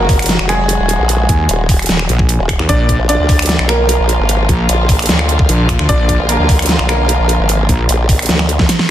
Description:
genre	heavy wobble dubstep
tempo	150 BPM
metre	4/4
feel	half-time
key	unclear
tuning	A4 = 441 Hz
part	bright baby grand piano	melody	0.0-8.9 s	Ab3 to D5	-19 LUFS	right 1 dB	ping-pong delay
part	dark chamber string section	sustained chords	0.0-8.9 s	D3 to Gb4	-21 LUFS	left 1 dB	sidechain pumping
part	formant-sweep wobble bass	bass	0.0-8.7 s	Eb1 to D2	-14 LUFS	equal	chorus, overdrive
part	dubstep drum kit	drums	0.1-8.9 s	finger snaps, hi-hat, snare drum, toms	-16 LUFS	right 1 dB	small room ambience
part	electronic kick drum	drums	0.1-8.7 s	none	-14 LUFS	equal	small room ambience
part	wobble bass	bass	1.3-7.9 s	Bb1 to Eb2	-14 LUFS	equal	chorus, overdrive
room	light reverb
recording	dense, heavily limited modern master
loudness	-10 LUFS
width	side -12 dB against mid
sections	0.0-8.9 A section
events	drum fill 8.3-8.9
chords	0.0 Ebm; 2.7 Bb

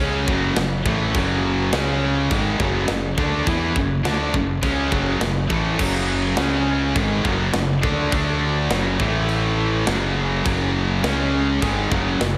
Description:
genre	heavy metal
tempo	103 BPM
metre	4/4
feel	straight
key	F# minor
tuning	A4 = 440 Hz
part	high-gain distorted guitar	riff	0.0-12.4 s	F#2 to E4	-27 LUFS	equal	distortion, slapback echo
part	overdriven electric guitar	riff	0.0-12.4 s	F#2 to E4	-28 LUFS	equal	none
part	scooped high-gain guitar	riff	0.0-12.4 s	F#2 to E4	-28 LUFS	equal	distortion, slapback echo
part	fuzz fingered electric bass	bass	0.0-12.4 s	F#1 to E2	-27 LUFS	equal	overdrive
part	tight metal drum kit	drums	0.3-12.3 s	china cymbal, crash cymbal, kick drum, snare drum	-28 LUFS	equal	none
room	moderate recital hall reverb, RT60 1.4 s, studio ambience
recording	big arena sound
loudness	-21 LUFS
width	mono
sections	0.0-12.4 A section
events	none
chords	0.0 F#m; 1.7 C#5; 2.3 F#m; 6.4 C#5; 7.0 F#m; 8.1 D5; 8.7 F#5; 9.0 A5; 9.9 F#5; 11.0 C#5; 11.6 F#5

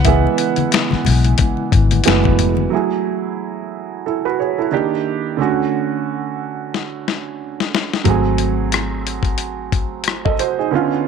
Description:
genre	R&B, neo-soul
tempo	90 BPM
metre	4/4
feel	swing 57% on 16ths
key	F# minor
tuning	A4 = 440 Hz
part	warm concert grand piano	accompaniment	0.0-11.1 s	D3 to F#5	-19 LUFS	right 10 dB	none
part	mellow tonewheel organ	sustained chords	0.0-2.7 s	C#3 to B4	-25 LUFS	left 2 dB	fast rotary speaker
part	vintage muted fingered electric bass	bass	0.0-2.7, 8.1-10.7 s	E#1 to C#2	-17 LUFS	left 2 dB	none
part	dusty soul sampler-style drum kit	drums	0.0-2.6, 6.7-10.6 s	finger snaps, hi-hat, kick drum, rim click, snare drum	-18 LUFS	left 6 dB	none
part	congas	percussion	0.1-2.7 s	none	-24 LUFS	left 14 dB	none
room	light reverb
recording	1960s-style stereo with parts hard left and right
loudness	-16 LUFS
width	side -6 dB against mid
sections	0.0-2.7 A section; 2.7-11.1 B section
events	grand piano solo 0.0-2.7; drum fill 6.7-8.1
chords	0.0 C#m7; 2.1 F#m11; 2.7 F#m9; 4.7 D#maj7; 5.4 Dmaj7; 8.1 G#7b9

